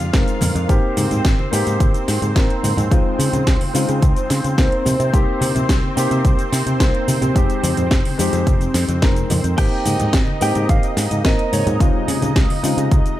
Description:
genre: nu-disco, nu disco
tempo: 108 BPM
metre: 4/4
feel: straight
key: F minor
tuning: A4 = 440 Hz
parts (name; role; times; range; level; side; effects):
- dark concert grand piano; accompaniment; 0.0-13.2 s; C3 to C5; -23 LUFS; left 2 dB; analog delay
- lush unison pad; sustained chords; 0.0-13.2 s; C4 to F5; -26 LUFS; right 1 dB; chorus, phaser, sidechain pumping
- fingered electric bass; bass; 0.0-13.0 s; F1 to Db3; -20 LUFS; equal; none
- house drum kit; drums; 0.0-13.2 s; crash cymbal, hi-hat, shaker, snare drum; -24 LUFS; equal; none
- electronic kick drum; drums; 0.1-13.0 s; none; -17 LUFS; equal; none
- congas; percussion; 0.4-13.0 s; none; -26 LUFS; left 1 dB; none
- direct-recorded clean electric guitar; melody; 9.6-13.2 s; Db5 to G5; -26 LUFS; right 2 dB; analog chorus, analog delay
room: little or no reverb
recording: none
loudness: -15 LUFS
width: side -14 dB against mid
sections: 0.0-13.2 A section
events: none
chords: 0.0 Fm7; 0.7 Abmaj7; 2.9 Dbmaj7; 4.9 Cm7; 7.4 Fm7; 9.6 Abmaj7; 11.8 Dbmaj7

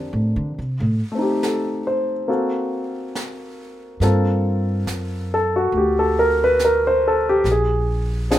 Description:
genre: jazz ballad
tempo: 70 BPM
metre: 4/4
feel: swing 69% on 8ths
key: G minor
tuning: A4 = 440 Hz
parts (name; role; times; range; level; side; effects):
- warm concert grand piano; accompaniment; 0.0-8.4 s; A3 to C5; -19 LUFS; equal; plate reverb
- upright bass; bass; 0.0-8.4 s; Bb1 to D3; -22 LUFS; equal; none
- jazz brush drum kit; drums; 0.6-8.4 s; brushed snare drum, hi-hat, snare drum; -33 LUFS; right 2 dB; none
room: moderate small room reverb, RT60 0.5 s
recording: rough home demo mix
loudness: -18 LUFS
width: side -13 dB against mid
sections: 0.0-4.0 A section; 4.0-8.4 A section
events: upright bass solo 0.0-4.0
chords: 0.0 Gm11; 0.6 Am7b5; 2.3 F#dim; 4.0 Gm11; 7.4 Bb7(no3)

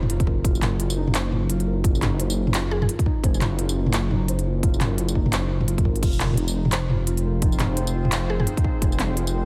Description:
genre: half-time drum and bass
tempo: 172 BPM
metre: 4/4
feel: swing 59% on 16ths, half-time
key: unclear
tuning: A4 = 438 Hz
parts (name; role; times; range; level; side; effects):
- felt-muted upright piano; arpeggios; 0.0-9.4 s; Eb4 to C5; -33 LUFS; equal; digital delay
- dark detuned saw bass; bass; 0.0-9.4 s; F1 to Ab1; -26 LUFS; equal; none
- industrial drum kit; drums; 0.0-9.3 s; crash cymbal, handclaps, hi-hat, tambourine, toms; -28 LUFS; equal; none
- electronic kick drum; drums; 0.2-8.9 s; none; -24 LUFS; equal; none
- mallet-like synth pluck; melody; 2.7-2.9, 8.3-8.4 s; Ab4; -36 LUFS; equal; chorus, digital delay
- deep dark ambient pad; sustained chords; 7.0-9.4 s; Ab3 to C5; -37 LUFS; equal; chorus, built-in reverb, sidechain pumping
room: little or no reverb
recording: none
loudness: -22 LUFS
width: mono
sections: 0.0-9.4 A section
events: none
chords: 0.4 Gb; 6.0 Fm

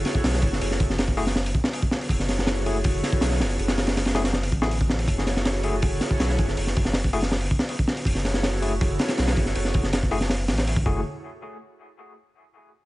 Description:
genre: drum and bass, jungle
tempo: 161 BPM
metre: 4/4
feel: straight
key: F# minor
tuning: A4 = 440 Hz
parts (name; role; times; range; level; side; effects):
- airy breathy pad; sustained chords; 0.0-11.0 s; E4 to C#5; -32 LUFS; right 1 dB; chorus, vintage 12-bit sampler grit
- saturated sub bass; bass; 0.0-11.0 s; F#1 to B1; -26 LUFS; equal; none
- crunchy breakbeat drum kit; drums; 0.1-10.9 s; hi-hat, kick drum, snare drum; -23 LUFS; equal; none
- overdriven tine electric piano; stabs; 1.2-11.0 s; A3 to G#4; -32 LUFS; left 3 dB; medium tremolo, dub echo
room: small room ambience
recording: nothing above 10.7 kHz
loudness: -21 LUFS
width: side -18 dB against mid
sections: 0.0-11.0 A section; 11.0-12.5 B section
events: drop 0.0-11.0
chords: 0.0 F#m9; 11.0 N.C.

